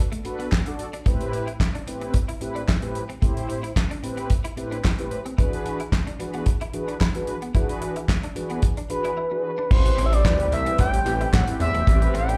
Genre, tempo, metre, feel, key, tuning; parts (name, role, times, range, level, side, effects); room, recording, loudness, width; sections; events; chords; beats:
early-eighties boogie funk; 111 BPM; 4/4; straight; A dorian; A4 = 440 Hz
clean electric guitar; riff; 0.1-12.4 s; A3 to E4; -39 LUFS; equal; ensemble chorus, slapback echo
damped 70s drum kit; drums; 0.1-12.4 s; crash cymbal, handclaps, hi-hat, kick drum, snare drum; -24 LUFS; equal
mellow synth brass; accompaniment; 0.2-12.1 s; A2 to D5; -32 LUFS; equal; chorus
group handclap; percussion; 0.5-11.5 s; -40 LUFS; equal; slapback echo
expressive synth lead; melody; 8.9-12.4 s; B4 to G5; -27 LUFS; equal; chorus, slapback echo
chorused pulse-width pad; sustained chords; 9.7-12.4 s; E3 to G4; -34 LUFS; equal
chorused synth bass; bass; 9.7-12.3 s; E1 to A2; -24 LUFS; equal
light reverb; live gig heard through the venue's PA, club reverb; -24 LUFS; mono
0.0-9.7 A section; 9.7-12.4 B section
break 9.2-9.7
0.0 Bm7; 1.1 Am7; 5.4 E9; 9.7 Am7
0.52 | 1.06 1.60 2.14 2.68 | 3.22 3.76 4.30 4.84 | 5.38 5.92 6.46 7.01 | 7.55 8.09 8.63 9.17 | 9.71 10.25 10.79 11.33 | 11.87